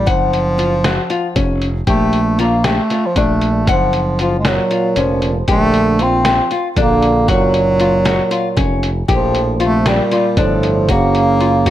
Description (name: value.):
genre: progressive instrumental, band music in an uneven meter.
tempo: 233 BPM (eighths).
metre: 7/8.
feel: straight.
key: unclear.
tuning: A4 = 440 Hz.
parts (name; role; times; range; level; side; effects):
clear bass clarinet; melody; 0.0-11.7 s; F3 to C4; -16 LUFS; right 1 dB; analog delay.
modern bright fingered electric bass; bass; 0.0-11.7 s; F1 to Bb1; -18 LUFS; equal; none.
nylon-string guitar; arpeggios; 0.1-11.7 s; Db4 to Gb5; -20 LUFS; left 6 dB; none.
lo-fi sampler-style drum kit; drums; 0.1-11.7 s; hi-hat, kick drum, snare drum; -19 LUFS; equal; none.
mellow trombone; second line; 4.5-11.7 s; A2 to F3; -20 LUFS; right 4 dB; none.
room: light reverb, small room ambience.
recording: none.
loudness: -12 LUFS.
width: side -12 dB against mid.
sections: 0.0-11.7 A section.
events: none.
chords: 0.1 Gb5; 1.9 Bbmaj7; 3.7 Gbmaj7; 5.5 Bbmaj7; 7.3 Gbmaj7; 9.1 Bbmaj7; 10.9 Gbmaj7.